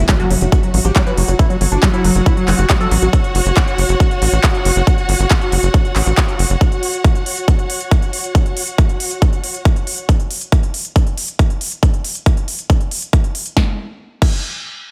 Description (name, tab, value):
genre	psychedelic trance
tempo	138 BPM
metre	4/4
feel	straight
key	unclear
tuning	A4 = 438 Hz
part	overdriven synth lead	melody	0.0-3.1 s	F#3 to B4	-24 LUFS	equal	phaser, sidechain pumping, digital delay
part	tight sequencer bass	bass	0.0-6.6 s	F#1 to A1	-17 LUFS	equal	none
part	impact	sound effects	0.0-1.4 s	none	-29 LUFS	equal	none
part	warm studio string section	texture	0.0-10.1 s	F#4 to F#5	-24 LUFS	equal	sidechain pumping
part	liquid acid bass	riff	0.1-3.1 s	F#3 to F#4	-25 LUFS	equal	chorus, sidechain pumping, digital delay
part	big-room dance drum kit	drums	0.1-14.3 s	crash cymbal, handclaps, hi-hat, snare drum	-24 LUFS	equal	none
part	electronic kick drum	drums	0.1-14.3 s	none	-16 LUFS	equal	none
room	digital ambience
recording	none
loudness	-15 LUFS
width	mono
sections	0.0-13.6 A section; 13.6-14.9 B section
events	impact 0.0-1.4; filter sweep on acid bass 0.0-3.1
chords	0.0 F#5; 13.6 N.C.